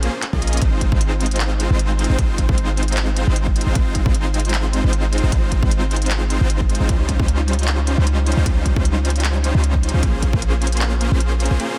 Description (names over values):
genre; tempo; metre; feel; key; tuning
future bass; 153 BPM; 4/4; swing 55% on 16ths, half-time; Ab major; A4 = 440 Hz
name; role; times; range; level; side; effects
supersaw chords; riff; 0.0-11.8 s; G3 to Eb5; -26 LUFS; equal; vintage 12-bit sampler grit, sidechain pumping, digital delay
warm 808-style bass; bass; 0.0-11.6 s; Ab1 to Db2; -21 LUFS; equal; sidechain pumping
trap drum kit; drums; 0.0-11.7 s; handclaps, hi-hat; -28 LUFS; equal; none
electronic kick drum; drums; 0.3-10.4 s; none; -21 LUFS; equal; none
room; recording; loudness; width
digital ambience; dense, heavily limited modern master; -18 LUFS; mono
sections
0.0-11.8 A section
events
drum fill 0.4; break 11.6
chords
0.0 Bbm9; 0.6 Ab6; 6.9 Dbmaj9#11; 10.0 Bbm9